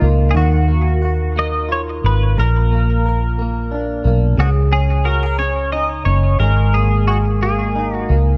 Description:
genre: six-eight pop ballad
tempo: 59 BPM (dotted quarters)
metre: 6/8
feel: straight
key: Eb minor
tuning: A4 = 436 Hz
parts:
  - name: twelve-string electric guitar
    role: melody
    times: 0.0-8.1 s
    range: Gb4 to Eb5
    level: -24 LUFS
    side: equal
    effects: analog chorus, digital delay
  - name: direct-recorded clean electric guitar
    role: accompaniment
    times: 0.0-8.4 s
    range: Bb2 to Bb4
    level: -24 LUFS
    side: equal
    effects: double-tracked
  - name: vintage muted fingered electric bass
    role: bass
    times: 0.0-8.4 s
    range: Gb1 to Eb2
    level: -18 LUFS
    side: equal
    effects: none
room: light reverb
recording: dark, warm production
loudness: -16 LUFS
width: mono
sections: 0.0-8.4 A section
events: none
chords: 0.4 Ebmadd9; 2.4 Bb; 4.4 Dbsus2; 6.4 Absus2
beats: | 0.35 1.37 | 2.38 3.38 | 4.38 5.39 | 6.40 7.42

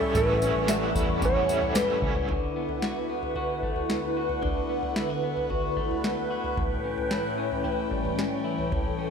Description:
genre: dream pop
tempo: 112 BPM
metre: 4/4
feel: straight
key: D major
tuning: A4 = 439 Hz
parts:
  - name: clean lap steel guitar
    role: melody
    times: 0.0-2.0 s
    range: A4 to C#5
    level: -28 LUFS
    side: right 2 dB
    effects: digital delay
  - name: raw garage guitar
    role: accompaniment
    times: 0.0-2.3 s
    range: A2 to E4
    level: -33 LUFS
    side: right 5 dB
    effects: overdrive, tremolo, ensemble chorus
  - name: phased analog pad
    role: sustained chords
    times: 0.0-9.1 s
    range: D2 to C#6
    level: -30 LUFS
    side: equal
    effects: phaser, chorus
  - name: electric guitar at the edge of break-up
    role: arpeggios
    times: 0.0-9.1 s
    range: A2 to F#4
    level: -31 LUFS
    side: left 4 dB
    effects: wide subtle chorus, digital delay
  - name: booming analog drum machine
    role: drums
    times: 0.0-8.9 s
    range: kick drum, snare drum, tambourine, toms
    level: -31 LUFS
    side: equal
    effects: overdrive
  - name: soft synth bell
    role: texture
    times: 0.0-2.5 s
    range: B4 to E5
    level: -34 LUFS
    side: left 4 dB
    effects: chorus, digital delay
  - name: vintage muted fingered electric bass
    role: bass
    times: 0.1-2.3 s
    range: A1 to E2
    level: -32 LUFS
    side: equal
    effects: none
room: wet recital hall reverb, RT60 1.6 s, digital ambience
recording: none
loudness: -25 LUFS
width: side -6 dB against mid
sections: 0.0-2.3 A section; 2.3-9.1 B section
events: none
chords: 0.0 A7; 2.3 D6; 6.6 A7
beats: | 0.15 0.68 1.22 1.75 | 2.29 2.83 3.36 3.90 | 4.43 4.97 5.50 6.04 | 6.58 7.11 7.65 8.18 | 8.72

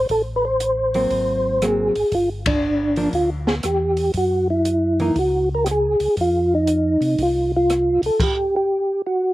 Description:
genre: soul jazz organ trio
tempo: 119 BPM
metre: 4/4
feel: swing 67% on 8ths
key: unclear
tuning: A4 = 440 Hz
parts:
  - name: percussive tonewheel organ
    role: melody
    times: 0.0-9.3 s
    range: D4 to C5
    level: -18 LUFS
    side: equal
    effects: slow rotary speaker, chorus vibrato
  - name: mellow tonewheel organ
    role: bass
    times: 0.0-8.1 s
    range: G1 to C3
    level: -26 LUFS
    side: equal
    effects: slow rotary speaker
  - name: open jazz drum kit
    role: drums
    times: 0.1-8.4 s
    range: crash cymbal, hi-hat, kick drum, ride cymbal, rim click, snare drum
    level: -27 LUFS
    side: equal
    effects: none
  - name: hollow-body jazz guitar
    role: accompaniment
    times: 0.9-5.2 s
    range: Fb3 to Eb4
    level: -25 LUFS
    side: equal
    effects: none
room: little or no reverb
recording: recorded outdoors, with no room sound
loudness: -17 LUFS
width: side -16 dB against mid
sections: 0.0-9.3 A section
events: band accent 2.4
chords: 0.1 Am6; 1.1 Ab9; 2.1 G5; 4.1 Gb7sus2; 6.2 F5; 8.2 N.C.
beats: | 0.10 0.61 1.11 1.62 | 2.12 2.63 3.13 3.64 | 4.14 4.65 5.16 5.66 | 6.17 6.67 7.18 7.68 | 8.19 8.69 9.20

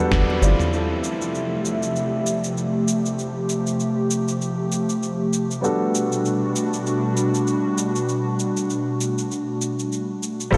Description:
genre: sunset chillout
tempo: 98 BPM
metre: 4/4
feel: swing 57% on 16ths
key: F major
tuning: A4 = 440 Hz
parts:
  - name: dark baby grand piano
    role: accompaniment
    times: 0.0-10.6 s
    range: G3 to D5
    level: -29 LUFS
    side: equal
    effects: vintage 12-bit sampler grit, analog delay
  - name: congas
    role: percussion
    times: 0.0-0.6 s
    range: none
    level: barely audible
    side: none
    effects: none
  - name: round analog bass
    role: bass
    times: 0.1-0.5, 10.5-10.6 s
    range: F1 to G1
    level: -21 LUFS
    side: equal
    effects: none
  - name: dusty soul sampler-style drum kit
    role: drums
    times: 0.1-10.6 s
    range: shaker, snare drum, toms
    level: -31 LUFS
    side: equal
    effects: none
  - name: electronic kick drum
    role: drums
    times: 0.1-0.3, 10.5-10.6 s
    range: none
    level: -26 LUFS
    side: equal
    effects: none
  - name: airy breathy pad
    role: sustained chords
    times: 1.0-10.5 s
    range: B2 to E5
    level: -24 LUFS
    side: equal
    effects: chorus
room: wet huge ambient reverb, RT60 8.9 s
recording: dreamy mix soaked in reverb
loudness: -23 LUFS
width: mono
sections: 0.7-10.5 A section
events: band accent 0.1-0.4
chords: 0.0 Gmaj9; 0.7 Fmaj9; 5.6 Gmaj9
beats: 0.12 | 0.73 1.34 1.96 2.57 | 3.18 3.79 4.41 5.02 | 5.63 6.24 6.85 7.47 | 8.08 8.69 9.30 9.91 | 10.53

